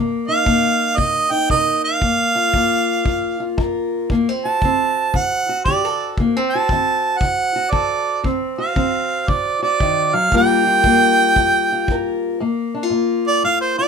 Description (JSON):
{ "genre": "acoustic country blues, solo or duo", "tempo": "116 BPM", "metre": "4/4", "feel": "swing 64% on 8ths", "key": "G minor", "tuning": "A4 = 439 Hz", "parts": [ { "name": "fingerpicked steel-string acoustic guitar", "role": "accompaniment", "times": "0.0-13.9 s", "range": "G2 to Bb4", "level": "-20 LUFS", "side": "left 2 dB", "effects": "none" }, { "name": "warm harmonica", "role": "melody", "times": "0.3-13.9 s", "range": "C5 to A5", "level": "-17 LUFS", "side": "right 3 dB", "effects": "none" }, { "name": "kick drum", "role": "drums", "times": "0.5-12.0 s", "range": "none", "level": "-23 LUFS", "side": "left 1 dB", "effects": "none" } ], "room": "light reverb", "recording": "minimal, uncompressed stereo recording", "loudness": "-15 LUFS", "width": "side -6 dB against mid", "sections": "0.0-12.4 A section; 12.4-13.9 B section", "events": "harmonica solo 12.4-13.9", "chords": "0.0 Cm7; 2.0 Gm7; 4.1 D7; 10.3 Gm7" }